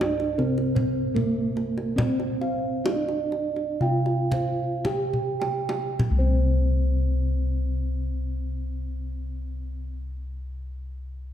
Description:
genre	Javanese gamelan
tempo	50-83 BPM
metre	4/4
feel	straight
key	C slendro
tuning	A4 = 440 Hz
part	gamelan-type bronze metallophone	melody	0.0-10.0 s	Bb3-40c to G4+20c	-29 LUFS	right 2 dB	none
part	gamelan-type bossed gongs	arpeggios	0.0-9.9 s	Bb4-40c to G5+20c	-36 LUFS	left 4 dB	none
part	gamelan-type bronze metallophone	arpeggios	0.0-9.9 s	Bb4-40c to G5+20c	-32 LUFS	right 8 dB	none
part	gamelan-type bossed gongs	bass	0.0-9.9 s	C2 to G4+20c	-27 LUFS	left 1 dB	none
part	kendang	percussion	0.0-6.5 s	none	-29 LUFS	equal	none
room	moderate scoring stage reverb, RT60 1.6 s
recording	dark, warm production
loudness	-23 LUFS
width	side -10 dB against mid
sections	0.0-6.0 A section; 6.0-10.8 B section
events	slowing down 0.0-6.0; drum fill 5.1-6.0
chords	none

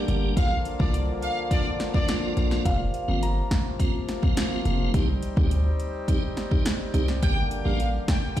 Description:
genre	dancehall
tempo	105 BPM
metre	4/4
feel	straight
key	unclear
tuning	A4 = 444 Hz
part	tonewheel organ	accompaniment	0.0-8.4 s	F3 to G4	-30 LUFS	right 1 dB	chorus vibrato, fast rotary speaker
part	hand-pumped harmonium	sustained chords	0.0-8.4 s	C3 to G4	-33 LUFS	left 2 dB	sidechain pumping
part	hard-hitting 808-style bass	bass	0.1-8.0 s	F1 to D2	-25 LUFS	equal	none
part	deep house drum kit	drums	0.1-8.4 s	hi-hat, kick drum, rim click, snare drum	-25 LUFS	equal	overdrive
part	warm symphonic violin section	melody	0.4-2.1, 7.2-8.4 s	D5 to G5	-31 LUFS	equal	ping-pong delay
part	soft synth bell	second line	2.1-4.3 s	D5 to Bb5	-34 LUFS	equal	chorus, ping-pong delay
room	little or no reverb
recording	played on a big sound system in a bare room, stone room reverb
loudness	-22 LUFS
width	side -12 dB against mid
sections	0.0-8.4 A section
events	none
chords	0.4 Bb; 2.7 Fsus4; 4.9 Cm; 7.2 Gm

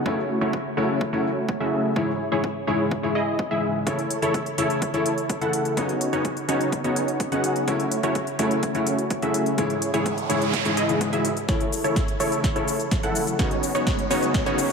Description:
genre	EDM, festival progressive house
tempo	126 BPM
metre	4/4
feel	straight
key	unclear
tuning	A4 = 441 Hz
part	felt-muted upright piano	accompaniment	0.0-14.6 s	G#2 to A4	-26 LUFS	left 3 dB	sidechain pumping, ping-pong delay
part	supersaw stab	riff	0.0-14.7 s	A3 to F#5	-24 LUFS	right 1 dB	cassette tape, sidechain pumping, low-pass filter, ping-pong delay
part	electronic kick drum	drums	0.1-14.4 s	none	-27 LUFS	right 1 dB	high-pass filter on kick
part	big-room dance drum kit	drums	3.9-14.7 s	hi-hat, shaker, snare drum	-32 LUFS	left 2 dB	overdrive, high-pass filter on hats, high-pass filter on snare, high-pass filter on perc
part	noise sweep and riser	sound effects	9.9-14.7 s	none	-32 LUFS	right 4 dB	none
part	wide unison pluck	arpeggios	11.5-14.7 s	C#5 to F#5	-31 LUFS	right 1 dB	sidechain pumping, ping-pong delay
room	wet plate reverb, RT60 2.5 s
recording	dreamy mix soaked in reverb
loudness	-21 LUFS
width	side -5 dB against mid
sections	0.0-11.5 A section; 11.5-14.7 B section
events	noise sweep 9.9-11.5; build-up 11.5-14.7; drum fill 11.5-14.7; filter sweep on supersaw synth 11.5-14.7; filter sweep on synth pluck 11.5-14.7; riser 11.7-14.7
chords	0.1 F#m7; 2.0 C#m/G#; 3.9 A; 5.8 Badd9; 7.7 F#m7; 9.6 C#m/G#; 11.5 A; 13.4 Badd9

